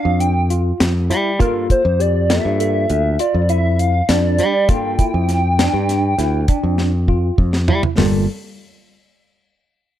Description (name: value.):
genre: progressive instrumental, band music in an uneven meter.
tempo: 201 BPM (eighths).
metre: 11/8.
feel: straight.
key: G dorian.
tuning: A4 = 443 Hz.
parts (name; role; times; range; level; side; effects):
hollow square lead; melody; 0.0-7.4 s; Bb4 to G5; -20 LUFS; equal; chorus.
tine electric piano; arpeggios; 0.0-8.3 s; G3 to A4; -24 LUFS; right 1 dB; overdrive, fast stereo tremolo.
modern bright fingered electric bass; bass; 0.1-8.3 s; G1 to G3; -17 LUFS; equal; none.
deep reggae drum kit; drums; 0.2-8.1 s; hi-hat, kick drum, snare drum, toms; -18 LUFS; equal; none.
hollow-body jazz guitar; accompaniment; 1.4-8.3 s; Bb3 to A4; -24 LUFS; left 2 dB; none.
room: little or no reverb.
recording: dark, warm production.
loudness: -14 LUFS.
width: side -11 dB against mid.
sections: 0.0-8.0 A section; 8.0-10.0 B section.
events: drum fill 6.8-8.0.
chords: 0.0 Gm9.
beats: 0.20 0.50 0.80 1.10 | 1.40 1.70 2.00 2.30 2.60 2.90 3.20 3.50 3.79 4.09 4.39 | 4.69 4.99 5.29 5.59 5.89 6.19 6.49 6.78 7.08 7.38 7.68 | 7.98.